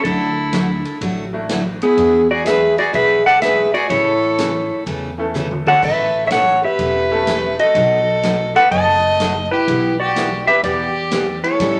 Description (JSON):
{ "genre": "country, western swing", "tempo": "125 BPM", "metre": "4/4", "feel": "swing 67% on 8ths", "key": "unclear", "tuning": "A4 = 441 Hz", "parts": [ { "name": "clean lap steel guitar", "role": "melody", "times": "0.0-11.8 s", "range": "B3 to A5", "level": "-17 LUFS", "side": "equal", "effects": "none" }, { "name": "clear fiddle", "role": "second line", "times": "0.0-11.8 s", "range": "E4 to D#5", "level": "-25 LUFS", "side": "equal", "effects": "none" }, { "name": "picked steel-string acoustic guitar", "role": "accompaniment", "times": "0.0-11.8 s", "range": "B2 to A4", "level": "-26 LUFS", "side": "equal", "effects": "none" }, { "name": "upright bass", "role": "bass", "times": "0.0-11.8 s", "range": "E1 to E2", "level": "-30 LUFS", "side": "equal", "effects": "none" }, { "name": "swinging big-band drum kit", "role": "drums", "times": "0.0-11.7 s", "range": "crash cymbal, hi-hat, kick drum, ride cymbal, snare drum, toms", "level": "-31 LUFS", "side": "equal", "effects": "none" }, { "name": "bright upright piano", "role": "accompaniment", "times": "1.3-10.6 s", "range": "E3 to B4", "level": "-28 LUFS", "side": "equal", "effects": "none" } ], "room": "wet studio reverb, RT60 0.6 s", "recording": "none", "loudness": "-16 LUFS", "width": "mono", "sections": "0.0-11.8 A section", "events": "drum fill 5.3-5.8", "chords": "0.0 Dadd9; 2.0 E7; 3.9 A; 5.8 Aadd9; 7.8 B7; 9.7 Em/B" }